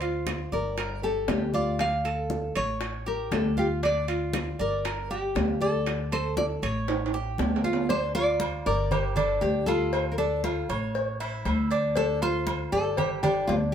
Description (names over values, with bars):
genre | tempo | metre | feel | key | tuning
latin, Cuban son and guajira | 118 BPM | 4/4 | straight | D minor | A4 = 440 Hz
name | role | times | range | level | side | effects
nylon-string guitar | melody | 0.0-13.7 s | F4 to F5 | -29 LUFS | left 2 dB | none
Cuban tres | arpeggios | 0.0-13.7 s | D4 to D5 | -30 LUFS | right 2 dB | none
upright bass | bass | 0.0-13.7 s | G1 to D2 | -30 LUFS | left 1 dB | none
congas | percussion | 0.0-13.7 s | none | -35 LUFS | right 1 dB | none
timbales and agogo bells | percussion | 0.0-13.7 s | none | -34 LUFS | right 5 dB | none
bongos and cowbell | percussion | 0.3-13.7 s | none | -35 LUFS | left 4 dB | none
room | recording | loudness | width
moderate studio reverb, RT60 0.7 s | band playing live in one room | -24 LUFS | side -8 dB against mid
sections
0.0-7.9 A section; 7.9-13.7 B section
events
drum fill 6.9-7.9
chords
0.0 Dm7; 0.8 Gm; 1.8 Dm; 2.8 A7; 3.8 Dm; 4.8 Gm; 5.9 D5; 6.9 A7; 7.9 G5; 9.9 Dm; 10.9 A; 12.0 G5